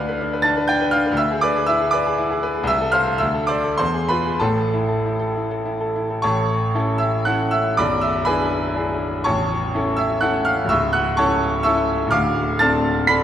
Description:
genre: classical, romantic character piece for solo piano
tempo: 91-130 BPM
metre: 3/4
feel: rubato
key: A minor, A major from 6.2 s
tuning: A4 = 441 Hz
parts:
  - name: bright grand piano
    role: solo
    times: 0.0-13.2 s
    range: A0 to B6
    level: -17 LUFS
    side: equal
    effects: none
room: wet concert hall reverb, RT60 2.2 s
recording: none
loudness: -17 LUFS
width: side -10 dB against mid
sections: 0.0-6.2 A section; 6.2-13.2 B section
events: none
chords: 0.0 Bdim/D; 1.2 E7/D; 2.7 Am/C; 3.2 D5; 3.8 E; 4.4 A5; 6.2 A; 7.8 E7/B; 9.3 A; 10.7 A/C#; 12.1 Dm7

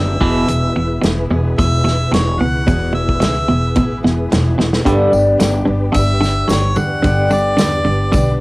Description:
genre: folk rock and heartland rock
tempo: 110 BPM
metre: 4/4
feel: straight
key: unclear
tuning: A4 = 442 Hz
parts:
  - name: clear harmonica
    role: melody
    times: 0.0-8.4 s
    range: C#5 to F#5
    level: -21 LUFS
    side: equal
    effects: none
  - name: picked steel-string acoustic guitar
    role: accompaniment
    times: 0.0-8.4 s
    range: E2 to G#4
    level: -21 LUFS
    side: left 2 dB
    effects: cassette tape
  - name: tonewheel organ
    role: sustained chords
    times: 0.0-8.4 s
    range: B3 to B4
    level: -25 LUFS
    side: equal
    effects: chorus vibrato, fast rotary speaker, cassette tape
  - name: twangy electric guitar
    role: riff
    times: 0.0-8.4 s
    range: E2 to G3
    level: -18 LUFS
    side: right 1 dB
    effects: phaser, cassette tape
  - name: upright bass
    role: bass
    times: 0.0-8.4 s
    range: E1 to E2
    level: -18 LUFS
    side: equal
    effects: none
  - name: natural country drum kit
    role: drums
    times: 0.2-8.3 s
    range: hi-hat, kick drum, snare drum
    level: -19 LUFS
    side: equal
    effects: cassette tape
  - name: tambourine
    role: percussion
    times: 4.9-8.3 s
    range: none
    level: -34 LUFS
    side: left 3 dB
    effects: none
room: light reverb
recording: home recording on cassette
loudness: -12 LUFS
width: side -22 dB against mid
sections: 0.0-8.4 A section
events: harmonica solo 0.0-8.4; drum fill 4.6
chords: 0.2 E; 4.9 G

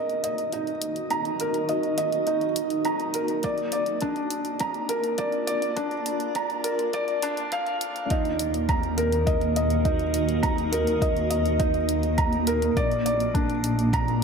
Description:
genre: piano and strings electronica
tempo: 103 BPM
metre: 4/4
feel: straight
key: Eb harmonic minor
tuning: A4 = 440 Hz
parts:
  - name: granular cloud pad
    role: sustained chords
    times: 0.0-14.2 s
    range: Bb3 to Eb5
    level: -29 LUFS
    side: equal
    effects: built-in reverb, sidechain pumping, shimmer reverb
  - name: felt-muted upright piano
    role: riff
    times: 0.0-14.2 s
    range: D4 to Bb5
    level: -26 LUFS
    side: right 1 dB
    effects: ping-pong delay, shimmer reverb
  - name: electronic hi-hat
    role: drums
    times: 0.1-14.2 s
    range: none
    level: -35 LUFS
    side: left 2 dB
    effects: high-pass filter on hats, high-pass filter on room
  - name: electronic kick drum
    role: drums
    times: 3.4-14.0 s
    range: none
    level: -27 LUFS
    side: equal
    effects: none
  - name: dark chamber double bass section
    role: bass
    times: 8.1-14.2 s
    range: Bb1 to Eb2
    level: -28 LUFS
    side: equal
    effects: sidechain pumping
room: wet lush hall reverb, RT60 2.0 s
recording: high-pass filter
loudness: -23 LUFS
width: side -5 dB against mid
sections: 0.0-8.1 A section; 8.1-14.2 B section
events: build-up 0.0-8.1; filter sweep on ambient pad 0.0-8.1; filter sweep 0.0-8.1; drop 8.1-14.2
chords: 0.0 Ebm; 3.4 Bb; 8.1 Ebm; 12.8 Bb

